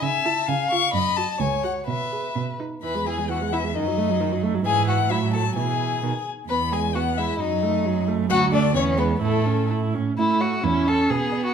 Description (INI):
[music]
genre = quick classical-period movement for string quartet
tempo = 124-135 BPM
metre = 2/4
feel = rubato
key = E major, A major from 8.3 s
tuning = A4 = 440 Hz
[part]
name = warm violin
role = melody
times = 0.0-11.5 s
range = A4 to C#6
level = -26 LUFS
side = left 10 dB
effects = none
[part]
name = warm violin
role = second line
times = 0.0-11.5 s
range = A3 to E#5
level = -26 LUFS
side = left 2 dB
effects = none
[part]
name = warm cello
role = bass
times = 0.0-11.5 s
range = C#2 to C#3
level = -25 LUFS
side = right 5 dB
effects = none
[part]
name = warm viola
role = accompaniment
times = 0.3-11.5 s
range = D#3 to G#4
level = -27 LUFS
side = right 4 dB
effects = none
[sound]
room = wet recital hall reverb, RT60 1.3 s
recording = minimal, uncompressed stereo recording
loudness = -20 LUFS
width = side -7 dB against mid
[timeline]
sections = 0.0-2.8 A section; 2.8-10.2 B section; 10.2-11.5 A section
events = none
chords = 0.0 C#m; 0.5 C#; 0.9 F#5; 1.9 E/B; 2.4 B; 2.8 E; 3.8 D#dim/F#; 4.7 E/G#; 5.1 F#m7/A; 5.6 E/B; 6.0 N.C.; 6.5 E; 7.4 D#dim/F#; 8.3 D; 8.8 E; 9.2 A